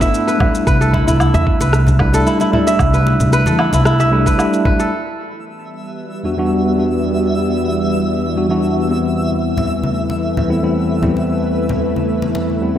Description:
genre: organic downtempo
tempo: 113 BPM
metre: 4/4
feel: straight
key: E minor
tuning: A4 = 440 Hz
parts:
  - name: tine electric piano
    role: accompaniment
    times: 0.0-12.8 s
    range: E2 to F#4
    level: -18 LUFS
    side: left 1 dB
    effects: medium stereo tremolo, sidechain pumping, diffuse ambient delay
  - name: kora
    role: arpeggios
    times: 0.0-6.1 s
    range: E4 to E5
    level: -18 LUFS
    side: equal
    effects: diffuse ambient delay
  - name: upright bass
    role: bass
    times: 0.0-4.3 s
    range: C2 to E2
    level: -15 LUFS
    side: equal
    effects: sidechain pumping
  - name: electronic kick drum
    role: drums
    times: 0.0-4.8 s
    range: none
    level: -17 LUFS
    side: equal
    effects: studio reverb
  - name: electronic shaker, woodblock and rim click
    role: drums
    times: 0.0-4.9 s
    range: none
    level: -24 LUFS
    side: right 1 dB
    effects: studio reverb
  - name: congas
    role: percussion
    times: 0.4-4.8, 9.3-12.6 s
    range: none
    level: -24 LUFS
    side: left 1 dB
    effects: none
  - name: bowed-like drone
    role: sustained chords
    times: 5.7-12.8 s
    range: E3 to B4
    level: -19 LUFS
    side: equal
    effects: built-in reverb, sidechain pumping
  - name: twinkling granular texture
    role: texture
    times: 5.4-12.8 s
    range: E5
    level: -27 LUFS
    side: right 1 dB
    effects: built-in reverb
room: wet plate reverb, RT60 2.2 s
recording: dreamy mix soaked in reverb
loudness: -13 LUFS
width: side -10 dB against mid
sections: 0.0-4.9 A section; 4.9-12.8 B section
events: filter sweep on synth drone 4.9-12.8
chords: 0.0 G69; 0.7 C69; 4.9 Em7; 9.2 Am7/E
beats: 0.14 | 0.67 1.20 1.73 2.26 | 2.79 3.33 3.86 4.39 | 4.92 5.45 5.98 6.51 | 7.04 7.57 8.10 8.63 | 9.17 9.70 10.23 10.76 | 11.29 11.82 12.35

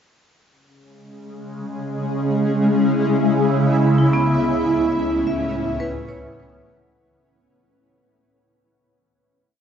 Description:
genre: ambient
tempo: free time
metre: none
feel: none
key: C# minor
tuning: A4 = 439 Hz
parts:
  - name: shimmering ambient pad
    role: sustained chords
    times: 1.6-7.0 s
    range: C#2 to E4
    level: -18 LUFS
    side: equal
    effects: chorus, built-in reverb, phaser
  - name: vibraphone with hard mallets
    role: arpeggios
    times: 4.0-9.6 s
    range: B3 to E5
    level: -24 LUFS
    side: equal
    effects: diffuse ambient delay
room: wet huge ambient reverb, RT60 8.8 s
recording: nothing above 7.6 kHz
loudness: -17 LUFS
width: side -8 dB against mid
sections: 0.5-7.0 A section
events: fade-in on vibraphone 0.5-7.0; fade-out 3.8-7.0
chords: 0.5 C#m; 3.8 Aadd9/C#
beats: free time

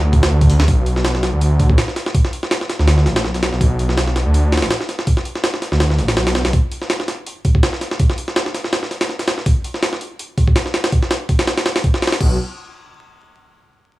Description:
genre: drum and bass, jungle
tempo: 164 BPM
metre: 4/4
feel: swing 55% on 16ths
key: B minor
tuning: A4 = 441 Hz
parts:
  - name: detuned saw bass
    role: bass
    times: 0.0-6.5, 12.2-12.4 s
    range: A1 to D2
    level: -15 LUFS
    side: equal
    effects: tube saturation
  - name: jungle sampler-style drum kit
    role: drums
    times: 0.1-12.3 s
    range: crash cymbal, hi-hat, kick drum, snare drum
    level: -16 LUFS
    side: equal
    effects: none
room: little or no reverb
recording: vinyl crackle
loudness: -15 LUFS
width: side -18 dB against mid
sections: 0.7-12.4 A section; 12.4-13.9 B section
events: none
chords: none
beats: 0.31 | 0.68 1.05 1.41 1.78 | 2.14 2.51 2.88 3.24 | 3.61 3.97 4.34 4.71 | 5.07 5.44 5.80 6.17 | 6.53 6.90 7.27 7.63 | 8.00 8.36 8.73 9.10 | 9.46 9.83 10.19 10.56 | 10.92 11.29 11.66 12.02

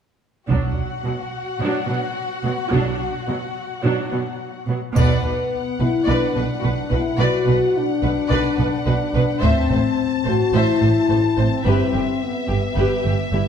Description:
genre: cinematic, epic orchestral film score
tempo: 108 BPM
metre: 4/4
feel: straight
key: B phrygian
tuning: A4 = 442 Hz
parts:
  - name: warm symphonic violin section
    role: second line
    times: 0.5-13.4 s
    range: E4 to F#5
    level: -28 LUFS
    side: left 4 dB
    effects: none
  - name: rich symphonic viola section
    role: accompaniment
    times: 0.5-13.4 s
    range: F#3 to C5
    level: -26 LUFS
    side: right 2 dB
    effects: none
  - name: clear symphonic double bass section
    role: bass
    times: 0.5-13.4 s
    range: G1 to B1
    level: -24 LUFS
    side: right 3 dB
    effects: none
  - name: rich symphonic cello section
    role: bass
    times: 0.5-13.4 s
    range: G2 to B2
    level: -24 LUFS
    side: right 3 dB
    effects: none
  - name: taiko ensemble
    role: drums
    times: 0.5-1.6, 5.0-6.0, 9.4-10.5 s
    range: none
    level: -24 LUFS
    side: equal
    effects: none
  - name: rich symphonic violin section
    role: melody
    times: 5.0-13.5 s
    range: E5 to A5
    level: -30 LUFS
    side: left 6 dB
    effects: none
  - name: warm French horn section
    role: sustained chords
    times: 5.0-13.5 s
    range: B3 to F#4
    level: -21 LUFS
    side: left 5 dB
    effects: none
  - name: triangle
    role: percussion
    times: 5.0-6.0 s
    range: none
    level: -45 LUFS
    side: left 2 dB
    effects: none
room: wet scoring stage reverb, RT60 1.5 s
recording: dark, warm production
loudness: -18 LUFS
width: side -8 dB against mid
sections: 0.5-5.0 A section; 5.0-13.5 B section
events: band accent 5.0-5.5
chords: 0.5 Bm; 9.4 Am; 11.7 Em/G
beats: | 0.51 1.06 1.62 2.18 | 2.74 3.29 3.85 4.41 | 4.97 5.52 6.08 6.64 | 7.20 7.75 8.31 8.87 | 9.43 9.98 10.54 11.10 | 11.65 12.21 12.77 13.33

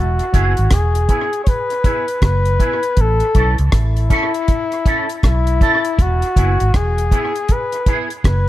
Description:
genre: roots reggae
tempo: 80 BPM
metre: 4/4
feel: swing 63% on 16ths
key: E major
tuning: A4 = 440 Hz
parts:
  - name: warm flugelhorn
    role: melody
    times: 0.0-8.5 s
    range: E4 to C#5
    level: -20 LUFS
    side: left 3 dB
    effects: tape echo
  - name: vintage muted fingered electric bass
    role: bass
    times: 0.0-8.5 s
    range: E1 to C#2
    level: -16 LUFS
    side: equal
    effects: none
  - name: deep reggae drum kit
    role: drums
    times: 0.2-8.5 s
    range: hi-hat, kick drum, rim click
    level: -17 LUFS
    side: equal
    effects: none
  - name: electric guitar with an envelope filter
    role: accompaniment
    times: 0.3-8.1 s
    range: B3 to A4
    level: -23 LUFS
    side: right 3 dB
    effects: ensemble chorus, tape echo
room: little or no reverb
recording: none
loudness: -14 LUFS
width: side -15 dB against mid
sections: 0.0-8.5 A section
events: none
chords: 0.0 E; 3.0 A; 6.0 E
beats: 0.71 1.47 2.22 | 2.97 3.73 4.48 5.23 | 5.98 6.74 7.49 8.24

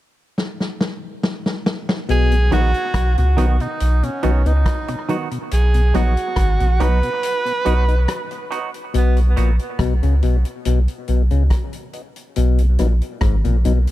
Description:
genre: dub reggae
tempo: 70 BPM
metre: 4/4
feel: straight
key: B major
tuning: A4 = 440 Hz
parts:
  - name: vintage drum kit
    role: drums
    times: 0.4-13.9 s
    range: hi-hat, kick drum, rim click, snare drum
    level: -23 LUFS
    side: equal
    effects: none
  - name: breathy tenor saxophone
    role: melody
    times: 2.1-9.2 s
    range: B3 to B4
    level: -24 LUFS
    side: right 2 dB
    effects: dub echo
  - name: mellow clav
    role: riff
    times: 2.1-2.3, 8.9-13.8 s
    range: G#2 to C#3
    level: -25 LUFS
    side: left 9 dB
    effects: dub echo
  - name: warm sub bass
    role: bass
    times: 2.1-13.9 s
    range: G#1 to C#2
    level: -15 LUFS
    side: equal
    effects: none
  - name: mellow tonewheel organ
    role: accompaniment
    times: 2.3-13.7 s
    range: B2 to D#4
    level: -28 LUFS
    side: left 4 dB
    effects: chorus vibrato, slow rotary speaker, high-pass filter
  - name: semi-hollow electric guitar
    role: accompaniment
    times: 2.5-9.6 s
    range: D#3 to F#4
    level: -27 LUFS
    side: right 6 dB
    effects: high-pass filter, dub echo
room: small room ambience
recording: echo-heavy mix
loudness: -16 LUFS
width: side -15 dB against mid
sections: 0.0-2.1 A section; 2.1-8.9 B section; 8.9-13.9 C section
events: drum fill 0.4-2.1; filter sweep 5.5-12.4; break 7.2-8.9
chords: 0.0 N.C.; 2.1 B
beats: 0.38 1.23 | 2.09 2.94 3.80 4.66 | 5.51 6.37 7.23 8.08 | 8.94 9.79 10.65 11.51 | 12.36 13.22

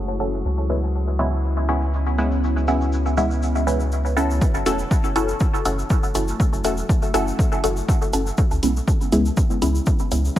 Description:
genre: dub techno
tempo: 121 BPM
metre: 4/4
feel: swing 53% on 16ths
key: F# minor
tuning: A4 = 440 Hz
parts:
  - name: deep dark ambient pad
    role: sustained chords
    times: 0.0-10.4 s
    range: A3 to G#4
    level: -31 LUFS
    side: equal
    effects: chorus, built-in reverb, sidechain pumping
  - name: round analog bass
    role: bass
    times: 0.0-10.3 s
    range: E1 to C#2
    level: -23 LUFS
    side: equal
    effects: sidechain pumping
  - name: metallic inharmonic drone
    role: texture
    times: 0.0-4.4 s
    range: F#3 to F#4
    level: -36 LUFS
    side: right 1 dB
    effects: chorus, built-in reverb, sidechain pumping
  - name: tube shaker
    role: percussion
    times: 0.1-10.4 s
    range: none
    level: -37 LUFS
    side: left 2 dB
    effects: none
  - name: filtered dub chord stab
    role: stabs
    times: 0.2-10.2 s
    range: G#3 to A4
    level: -23 LUFS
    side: equal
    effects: phaser, sidechain pumping, dub echo
  - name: electronic kick drum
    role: drums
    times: 4.4-10.4 s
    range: none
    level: -19 LUFS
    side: equal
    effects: overdrive
  - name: electronic hi-hat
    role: drums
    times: 4.7-10.2 s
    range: none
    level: -32 LUFS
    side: right 2 dB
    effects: low-pass filter on hats
room: light reverb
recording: vinyl crackle, low-pass filter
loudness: -18 LUFS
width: side -13 dB against mid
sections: 0.0-4.4 A section; 4.4-10.4 B section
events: filter sweep 0.0-4.4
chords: 0.4 C#m7; 4.4 F#m7; 8.4 C#m7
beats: | 0.45 0.94 1.44 1.94 | 2.43 2.93 3.42 3.92 | 4.41 4.91 5.41 5.90 | 6.40 6.89 7.39 7.88 | 8.38 8.88 9.37 9.87 | 10.36

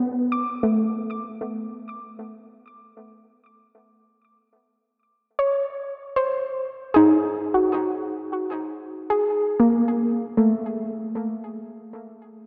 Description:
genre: ambient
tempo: free time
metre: none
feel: none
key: unclear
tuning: A4 = 442 Hz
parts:
  - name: soft round pluck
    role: solo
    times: 0.0-12.4 s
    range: A3 to D6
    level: -24 LUFS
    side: equal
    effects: chorus, tape echo
room: wet lush hall reverb, RT60 2.7 s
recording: dark, warm production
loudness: -23 LUFS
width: mono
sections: 0.0-12.5 A section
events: none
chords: 0.0 D5; 3.0 Gb5; 9.3 Absus2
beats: free time

